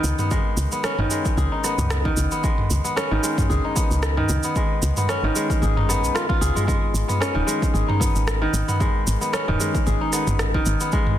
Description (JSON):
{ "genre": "organic downtempo", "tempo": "113 BPM", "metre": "4/4", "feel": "swing 55% on 16ths", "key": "unclear", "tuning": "A4 = 440 Hz", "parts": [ { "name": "kora", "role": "arpeggios", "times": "0.0-11.2 s", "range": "D#3 to G#4", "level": "-23 LUFS", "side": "equal", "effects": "ping-pong delay" }, { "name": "woody FM bass", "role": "bass", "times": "0.0-10.8 s", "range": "D#1 to C#2", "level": "-23 LUFS", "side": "equal", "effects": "sidechain pumping" }, { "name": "organic electronic drum kit", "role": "drums", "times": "0.0-11.2 s", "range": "rim click, shaker, toms", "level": "-26 LUFS", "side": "right 1 dB", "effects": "soft clipping on snare" }, { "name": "electronic kick drum", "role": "drums", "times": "0.3-11.0 s", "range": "none", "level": "-24 LUFS", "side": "equal", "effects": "none" } ], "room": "light reverb", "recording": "dense, heavily limited modern master", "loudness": "-19 LUFS", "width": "side -11 dB against mid", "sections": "0.0-11.2 A section", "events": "none", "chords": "0.0 C#sus2; 6.7 G#m" }